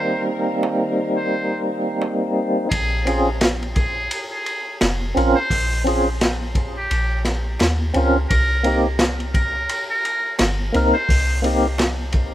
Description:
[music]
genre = trip hop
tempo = 86 BPM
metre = 4/4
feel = swing 59% on 16ths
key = Bb dorian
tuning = A4 = 440 Hz
[part]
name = trumpet with metal mute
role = melody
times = 0.0-11.4 s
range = G4 to C5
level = -26 LUFS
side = equal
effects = tape echo
[part]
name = tonewheel organ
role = accompaniment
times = 0.0-11.7 s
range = G3 to Bb4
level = -20 LUFS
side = equal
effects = slow rotary speaker, tremolo, tape echo
[part]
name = dark chamber string section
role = sustained chords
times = 0.0-2.7 s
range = Eb3 to Bb4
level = -36 LUFS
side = left 2 dB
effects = none
[part]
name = darbuka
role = percussion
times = 0.6-11.9 s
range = none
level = -32 LUFS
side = right 2 dB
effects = none
[part]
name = soft 808-style bass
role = bass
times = 2.7-12.3 s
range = F1 to Eb2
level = -22 LUFS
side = equal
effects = none
[part]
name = crunchy breakbeat drum kit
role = drums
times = 2.7-12.3 s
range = hi-hat, kick drum, ride cymbal, snare drum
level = -22 LUFS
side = equal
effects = none
[sound]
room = small room reverb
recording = rough home demo mix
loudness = -18 LUFS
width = side -13 dB against mid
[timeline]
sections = 0.0-2.7 A section; 2.7-12.3 B section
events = none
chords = 0.0 Cm7; 2.7 Bbm7; 8.3 Cm7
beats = 0.62 1.32 2.02 | 2.71 3.41 4.11 4.81 | 5.51 6.20 6.90 7.60 | 8.30 8.99 9.69 10.39 | 11.09 11.79

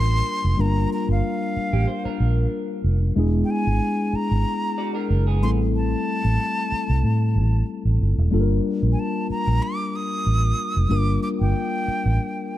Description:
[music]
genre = soul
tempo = 93 BPM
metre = 4/4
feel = swing 54% on 16ths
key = G minor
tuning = A4 = 440 Hz
[part]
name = breathy bright jazz flute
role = melody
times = 0.0-12.6 s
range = F5 to Eb6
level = -28 LUFS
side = right 1 dB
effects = none
[part]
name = mellow tine electric piano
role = accompaniment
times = 0.0-12.6 s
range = G3 to Bb4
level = -25 LUFS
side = left 3 dB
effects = wide subtle chorus
[part]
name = electric guitar through a small old amp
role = riff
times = 0.0-5.6 s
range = Bb3 to D5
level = -33 LUFS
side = right 2 dB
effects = wide subtle chorus
[part]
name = vintage muted fingered electric bass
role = bass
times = 0.0-12.2 s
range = E1 to A2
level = -20 LUFS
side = right 1 dB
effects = none
[sound]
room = little or no reverb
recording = dark, warm production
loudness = -20 LUFS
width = side -14 dB against mid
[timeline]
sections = 0.0-12.6 A section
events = none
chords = 0.0 Gm7; 3.2 E7; 5.4 Am7; 8.3 Gm7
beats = | 0.59 1.24 1.88 2.53 | 3.17 3.82 4.46 5.11 | 5.75 6.39 7.04 7.68 | 8.33 8.97 9.62 10.26 | 10.90 11.55 12.19

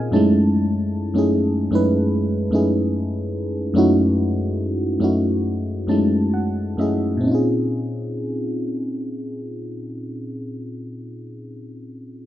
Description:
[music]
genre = R&B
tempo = 65-76 BPM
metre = 4/4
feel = swing 58% on 16ths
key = unclear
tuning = A4 = 440 Hz
[part]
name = FM electric piano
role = solo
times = 0.0-12.3 s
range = Gb2 to A5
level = -19 LUFS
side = equal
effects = chorus
[sound]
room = light reverb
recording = rough home demo mix, nothing above 7.9 kHz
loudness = -18 LUFS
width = side -12 dB against mid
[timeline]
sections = 0.0-7.2 A section; 7.2-11.0 B section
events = FM electric piano fill 0.0-0.5, 5.4-7.2; slowing down 0.5-7.2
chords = 0.1 Gbm9; 7.2 Bbm9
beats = | 0.52 1.31 2.11 2.92 | 3.74 4.58 5.44 6.33 | 7.24 8.17 9.10 10.03

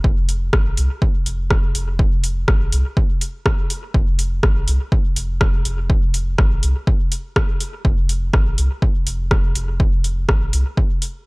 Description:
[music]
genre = dub techno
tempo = 123 BPM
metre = 4/4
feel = swing 53% on 16ths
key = F minor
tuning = A4 = 440 Hz
[part]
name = soft dub sub bass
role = bass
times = 0.0-10.6 s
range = F1 to C2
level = -21 LUFS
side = equal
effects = tube saturation, sidechain pumping
[part]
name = electronic kick drum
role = drums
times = 0.0-10.9 s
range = none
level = -17 LUFS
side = equal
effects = overdrive
[part]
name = deep house drum kit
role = drums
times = 0.3-11.1 s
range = hi-hat, rim click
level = -24 LUFS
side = equal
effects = none
[sound]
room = digital ambience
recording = dry, gritty hardware recording, cassette tape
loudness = -16 LUFS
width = side -29 dB against mid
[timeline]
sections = 0.0-11.3 A section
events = none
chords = none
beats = | 0.04 0.53 1.02 1.51 | 1.99 2.48 2.97 3.46 | 3.94 4.43 4.92 5.41 | 5.90 6.38 6.87 7.36 | 7.85 8.34 8.82 9.31 | 9.80 10.29 10.78

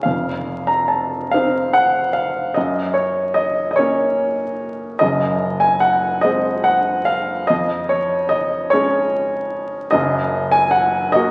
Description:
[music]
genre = classical, romantic nocturne for solo piano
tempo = 49 BPM (dotted quarters)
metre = 12/8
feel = rubato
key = unclear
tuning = A4 = 440 Hz
[part]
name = warm concert grand piano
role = solo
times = 0.0-11.3 s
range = F1 to Bb5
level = -18 LUFS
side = equal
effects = none
[sound]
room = wet recital hall reverb, RT60 1.6 s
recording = very old 78 rpm record, vinyl crackle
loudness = -19 LUFS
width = mono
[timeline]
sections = 0.1-11.3 A section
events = none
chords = 0.1 F5; 2.6 Gb; 5.0 Ab7/Gb; 7.5 Db/F; 9.9 Gbsus2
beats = | 0.05 1.32 2.55 3.77 | 5.01 6.24 7.50 8.72 | 9.94 11.14

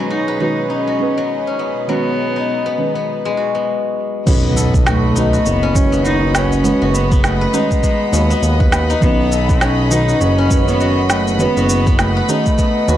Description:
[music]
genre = organic downtempo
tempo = 101 BPM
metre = 4/4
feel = swing 59% on 16ths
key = B mixolydian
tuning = A4 = 440 Hz
[part]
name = dark cello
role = melody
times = 0.0-13.0 s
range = G#3 to D#4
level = -21 LUFS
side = equal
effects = analog delay
[part]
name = deep mellow chord stab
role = accompaniment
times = 0.0-13.0 s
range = D#3 to B4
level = -23 LUFS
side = right 4 dB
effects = chorus, sidechain pumping
[part]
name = rich chamber string section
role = sustained chords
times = 0.0-13.0 s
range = B2 to B5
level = -26 LUFS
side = left 1 dB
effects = sidechain pumping
[part]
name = steel-string zither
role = arpeggios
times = 0.0-13.0 s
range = F#3 to B4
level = -20 LUFS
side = left 2 dB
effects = analog delay
[part]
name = smooth synth bass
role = bass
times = 4.3-13.0 s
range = F#1 to D#2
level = -17 LUFS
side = equal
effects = sidechain pumping
[part]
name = electronic kick drum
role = drums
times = 4.3-12.7 s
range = none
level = -15 LUFS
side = equal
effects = none
[part]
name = organic electronic drum kit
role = drums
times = 4.3-13.0 s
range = crash cymbal, shaker, snare drum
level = -21 LUFS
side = equal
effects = none
[part]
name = impact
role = sound effects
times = 4.3-6.6 s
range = none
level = -23 LUFS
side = equal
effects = none
[part]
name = drifting glass-harmonics texture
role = texture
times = 5.0-13.0 s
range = B5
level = -31 LUFS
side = right 3 dB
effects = chorus, built-in reverb
[sound]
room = little or no reverb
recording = dry, gritty hardware recording, cassette tape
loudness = -13 LUFS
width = side -12 dB against mid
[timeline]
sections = 0.0-4.3 A section; 4.3-13.0 B section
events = impact 4.3-6.6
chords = 0.0 G#m7/B; 4.3 B7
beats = 0.11 0.70 1.30 | 1.89 2.48 3.08 3.67 | 4.27 4.86 5.46 6.05 | 6.64 7.24 7.83 8.43 | 9.02 9.61 10.21 10.80 | 11.40 11.99 12.58

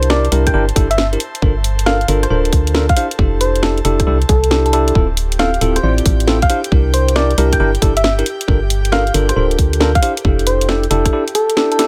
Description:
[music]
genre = UK garage, two-step garage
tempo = 136 BPM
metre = 4/4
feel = swing 67% on 16ths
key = unclear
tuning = A4 = 441 Hz
[part]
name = soft struck synth lead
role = melody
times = 0.0-11.9 s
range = A4 to G5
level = -22 LUFS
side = equal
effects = chorus, tape echo
[part]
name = airy breathy pad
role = sustained chords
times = 0.0-11.9 s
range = G4 to A5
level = -31 LUFS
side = equal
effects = chorus, sidechain pumping
[part]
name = tine electric piano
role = stabs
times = 0.0-11.9 s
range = C4 to D5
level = -21 LUFS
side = equal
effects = tape echo
[part]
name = organ-like FM bass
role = bass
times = 0.0-11.1 s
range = D1 to D2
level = -19 LUFS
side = equal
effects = sidechain pumping
[part]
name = garage drum kit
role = drums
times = 0.0-11.9 s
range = hi-hat, rim click, snare drum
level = -22 LUFS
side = equal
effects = none
[part]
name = electronic kick drum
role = drums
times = 0.5-11.1 s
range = none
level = -17 LUFS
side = equal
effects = none
[sound]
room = light reverb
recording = none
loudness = -15 LUFS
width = mono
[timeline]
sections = 0.0-11.9 A section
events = none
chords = 0.0 C9; 1.2 Gm9; 3.0 Fmaj13; 5.0 Dm9; 6.5 C9; 8.3 Gm9; 10.0 Fmaj13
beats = 0.10 0.54 0.98 | 1.42 1.86 2.31 2.75 | 3.19 3.63 4.07 4.51 | 4.95 5.39 5.83 6.28 | 6.72 7.16 7.60 8.04 | 8.48 8.92 9.36 9.81 | 10.25 10.69 11.13 11.57

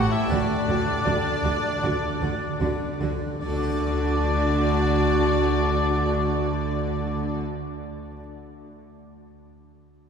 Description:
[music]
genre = classical, baroque-style concerto movement with solo episodes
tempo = 74-82 BPM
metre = 4/4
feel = straight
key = D major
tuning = A4 = 440 Hz
[part]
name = rich studio violin section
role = melody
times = 0.0-7.4 s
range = D5 to F#5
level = -35 LUFS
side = left 3 dB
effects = none
[part]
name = warm oboe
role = melody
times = 0.0-7.4 s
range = D4 to D5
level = -30 LUFS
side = left 2 dB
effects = none
[part]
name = rich chamber violin section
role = second line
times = 0.0-7.4 s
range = D4 to F#5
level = -31 LUFS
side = equal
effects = none
[part]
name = harpsichord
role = accompaniment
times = 0.0-8.2 s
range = A2 to D5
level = -34 LUFS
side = left 1 dB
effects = none
[part]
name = rich chamber viola section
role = accompaniment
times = 0.3-7.4 s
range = F#4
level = -30 LUFS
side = equal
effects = none
[part]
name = clear chamber double bass section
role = bass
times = 0.3-7.4 s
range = D2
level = -27 LUFS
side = right 1 dB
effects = none
[part]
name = rich chamber cello section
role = bass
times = 0.3-7.4 s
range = D3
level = -30 LUFS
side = right 3 dB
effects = none
[sound]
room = wet cathedral reverb, RT60 5.3 s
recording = heard from further back in the room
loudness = -21 LUFS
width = side -6 dB against mid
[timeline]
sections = 0.0-3.4 A section; 3.4-6.6 B section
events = slowing down 0.0-3.4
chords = 0.3 D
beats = | 0.30 1.05 1.82 2.60 | 3.41 4.22 5.02 5.83

